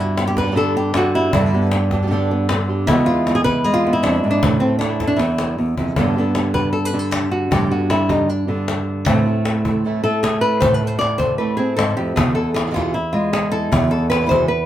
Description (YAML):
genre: flamenco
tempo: 155 BPM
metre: 4/4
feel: straight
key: unclear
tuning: A4 = 437 Hz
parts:
  - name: flamenco guitar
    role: melody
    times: 0.0-14.7 s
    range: E2 to D5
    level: -17 LUFS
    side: equal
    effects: none
  - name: flamenco guitar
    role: stabs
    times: 0.0-14.5 s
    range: E2 to G4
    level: -26 LUFS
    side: right 4 dB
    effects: none
  - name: cajon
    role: percussion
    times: 0.2-14.5 s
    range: none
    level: -23 LUFS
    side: left 2 dB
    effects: none
room: moderate studio reverb, RT60 0.5 s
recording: band playing live in one room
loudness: -16 LUFS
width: side -12 dB against mid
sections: 0.0-6.0 A section; 6.0-14.7 B section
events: drum fill 5.2-6.0; nylon-string guitar solo 6.0-14.7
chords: 0.0 G; 2.9 E; 4.4 Am; 5.2 E; 6.0 Gadd9; 9.1 Am; 12.2 E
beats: 0.17 0.56 0.94 | 1.33 1.72 2.10 2.49 | 2.88 3.27 3.65 4.04 | 4.42 4.81 5.20 5.58 | 5.97 6.36 6.74 7.13 | 7.52 7.91 8.29 8.68 | 9.07 9.46 9.84 10.23 | 10.62 11.01 11.39 11.78 | 12.17 12.56 12.95 13.34 | 13.72 14.11 14.50